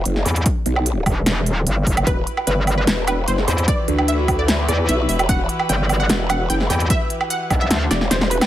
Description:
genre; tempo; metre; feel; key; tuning
heavy wobble dubstep; 149 BPM; 4/4; half-time; E minor; A4 = 440 Hz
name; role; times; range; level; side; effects
growl bass; bass; 0.0-8.4 s; E1 to D2; -20 LUFS; equal; chorus, overdrive
big-room dance drum kit; drums; 0.1-8.5 s; hi-hat, snare drum, woodblock; -21 LUFS; right 1 dB; overdrive
metallic wobble bass; bass; 0.3-7.9 s; E1 to E2; -19 LUFS; equal; chorus, overdrive
electronic kick drum; drums; 0.5-7.6 s; none; -21 LUFS; equal; overdrive
wide unison pluck; melody; 2.1-8.5 s; B4 to G5; -24 LUFS; right 1 dB; digital delay
dark chamber string section; sustained chords; 2.1-8.5 s; E3 to B4; -28 LUFS; left 2 dB; sidechain pumping
room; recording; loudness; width
light reverb, digital ambience; none; -16 LUFS; side -13 dB against mid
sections
0.0-8.5 A section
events
kick drops out 7.7-8.5; drum fill 7.9-8.5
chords
0.0 Emadd9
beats
0.06 | 0.46 0.86 1.26 1.67 | 2.07 2.47 2.87 3.28 | 3.68 4.08 4.49 4.89 | 5.29 5.69 6.10 6.50 | 6.90 7.30 7.71 8.11

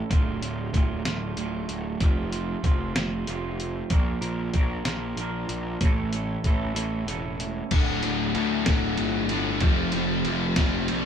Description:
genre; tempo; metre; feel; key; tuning
quiet-loud alternative rock; 63 BPM (dotted quarters); 6/8; straight; D minor; A4 = 440 Hz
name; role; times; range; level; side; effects
electric guitar at the edge of break-up; arpeggios; 0.0-7.7 s; D2 to Bb4; -31 LUFS; right 6 dB; none
fuzz picked electric bass; bass; 0.1-11.1 s; D1 to D2; -30 LUFS; equal; overdrive
trip hop sampler-style drum kit; drums; 0.1-11.0 s; crash cymbal, hi-hat, kick drum, ride cymbal, snare drum; -25 LUFS; equal; none
overdriven electric guitar; riff; 7.7-11.1 s; D2 to F3; -24 LUFS; left 2 dB; none
room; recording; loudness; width
light reverb; band playing live in one room; -23 LUFS; side -8 dB against mid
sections
0.0-7.7 A section; 7.7-11.1 B section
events
break 6.8-7.7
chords
0.1 Dm; 2.0 F; 3.9 Bb; 5.8 A; 7.7 D5; 9.6 F5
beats
| 0.11 1.06 | 2.01 2.96 | 3.91 4.86 | 5.81 6.76 | 7.72 8.67 | 9.62 10.57

